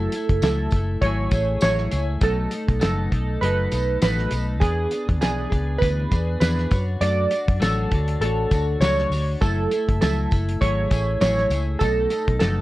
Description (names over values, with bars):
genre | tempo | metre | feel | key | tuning
indie pop, bedroom pop | 100 BPM | 4/4 | swing 55% on 16ths | F# minor | A4 = 440 Hz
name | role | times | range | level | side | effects
warm analog keys | melody | 0.0-12.6 s | G#4 to D5 | -24 LUFS | right 2 dB | lush chorus
twelve-string electric guitar | accompaniment | 0.0-12.6 s | B2 to C#5 | -28 LUFS | left 2 dB | analog chorus, warbly pitch drift
vintage muted fingered electric bass | bass | 0.0-12.6 s | F#1 to F#2 | -24 LUFS | equal | none
cloth-damped thuddy drum kit | drums | 0.1-12.6 s | hi-hat, kick drum, snare drum | -23 LUFS | equal | none
tambourine | percussion | 0.1-12.6 s | none | -40 LUFS | right 3 dB | none
room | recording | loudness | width
light reverb, studio ambience | worn, warbling old tape, cassette tape, warbly pitch drift | -19 LUFS | side -17 dB against mid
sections
0.0-12.6 A section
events
none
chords
0.0 F#m9; 2.2 B7; 4.6 E7; 6.7 Dmaj7; 9.4 F#m9; 11.8 B7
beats
0.42 1.02 1.62 | 2.22 2.82 3.42 4.02 | 4.62 5.22 5.82 6.42 | 7.02 7.62 8.21 8.81 | 9.41 10.01 10.61 11.21 | 11.81 12.41